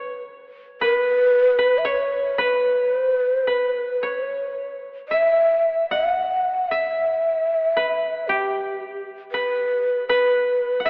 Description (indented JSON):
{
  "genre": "japanese traditional, Japanese chamber music",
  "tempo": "57 BPM",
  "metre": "2/4",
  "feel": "rubato",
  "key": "unclear",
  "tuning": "A4 = 440 Hz",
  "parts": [
    { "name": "breathy mellow long shakuhachi", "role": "melody", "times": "0.0-10.9 s", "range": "G4 to F#5", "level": "-22 LUFS", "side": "equal", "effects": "none" },
    { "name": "koto", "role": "second line", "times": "0.0-10.9 s", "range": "G4 to F#5", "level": "-29 LUFS", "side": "equal", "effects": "none" }
  ],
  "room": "moderate church reverb, RT60 3.5 s",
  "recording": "telephone sound",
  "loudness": "-21 LUFS",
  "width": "mono",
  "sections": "0.0-10.9 A section",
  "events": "none",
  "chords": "none",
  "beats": "| 0.81 1.85 | 2.93 4.01 | 5.10 6.17 | 7.23 8.28 | 9.32 10.34"
}